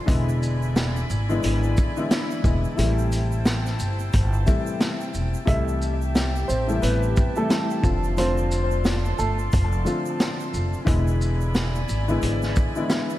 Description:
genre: hip hop, boom-bap hip-hop.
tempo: 89 BPM.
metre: 4/4.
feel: swing 60% on 16ths.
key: unclear.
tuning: A4 = 441 Hz.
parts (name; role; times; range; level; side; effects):
dark baby grand piano; accompaniment; 0.0-13.2 s; C3 to F4; -27 LUFS; left 3 dB; high-pass filter, low-pass filter.
clear studio string section; sustained chords; 0.0-13.2 s; E4 to C6; -33 LUFS; equal; high-pass filter, low-pass filter.
upright bass; bass; 0.1-12.5 s; E1 to C2; -24 LUFS; equal; none.
vintage drum kit; drums; 0.1-13.1 s; hi-hat, kick drum, shaker, snare drum; -24 LUFS; equal; none.
egg shaker; percussion; 0.1-13.2 s; none; -47 LUFS; right 10 dB; none.
warm upright piano; melody; 5.5-9.4 s; A3 to E5; -29 LUFS; right 2 dB; high-pass filter, low-pass filter, ping-pong delay.
room: light reverb, studio reverb.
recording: vinyl crackle.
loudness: -20 LUFS.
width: side -15 dB against mid.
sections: 0.0-13.2 A section.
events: none.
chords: 0.1 E7; 2.8 Am7; 5.5 C6; 7.8 F6; 10.9 E7.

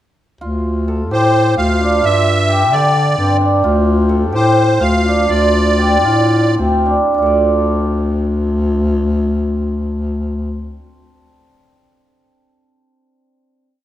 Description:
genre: contemporary instrumental, chamber music in an uneven meter.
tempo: 210-262 BPM (eighths).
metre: 7/8.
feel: straight.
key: D minor.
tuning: A4 = 440 Hz.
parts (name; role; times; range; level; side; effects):
cimbalom; arpeggios; 0.4-11.0 s; C4 to D5; -16 LUFS; right 1 dB; none.
warm bass clarinet; bass; 0.4-10.9 s; D2 to D3; -15 LUFS; left 1 dB; none.
musette accordion; melody; 1.1-6.5 s; C5 to F5; -17 LUFS; right 2 dB; none.
room: moderate recital hall reverb, RT60 1.6 s.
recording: none.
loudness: -12 LUFS.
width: side -12 dB against mid.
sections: 0.4-7.2 A section; 7.2-11.1 final chord.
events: slowing down 3.6-7.2.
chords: 0.4 Dm7; 2.0 G7sus4; 3.6 Dm7.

